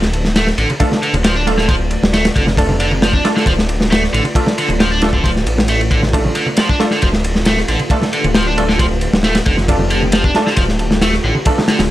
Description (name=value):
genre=breakbeat, breaks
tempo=135 BPM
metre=4/4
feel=straight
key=D minor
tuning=A4 = 440 Hz
part: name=deep dark ambient pad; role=sustained chords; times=1.1-11.9 s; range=A3 to D5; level=-25 LUFS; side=equal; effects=chorus, built-in reverb, sidechain pumping
part: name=detuned saw bass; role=bass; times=0.0-11.9 s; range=D1 to A1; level=-18 LUFS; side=equal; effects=none
part: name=crunchy breakbeat drum kit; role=drums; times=0.0-11.9 s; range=kick drum, ride cymbal, snare drum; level=-16 LUFS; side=equal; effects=none
part: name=congas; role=percussion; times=0.2-11.9 s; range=none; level=-23 LUFS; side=right 1 dB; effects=none
part: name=biting overdriven guitar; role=riff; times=0.4-11.8 s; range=D3 to D4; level=-19 LUFS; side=right 1 dB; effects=analog delay
part: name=orchestra-hit-like synth stab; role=stabs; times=0.8-11.7 s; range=A3 to A4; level=-21 LUFS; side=right 2 dB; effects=built-in reverb, vintage 12-bit sampler grit, analog delay
room=studio ambience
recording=dry, gritty hardware recording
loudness=-12 LUFS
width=side -14 dB against mid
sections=0.0-11.9 A section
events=none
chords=0.0 Dm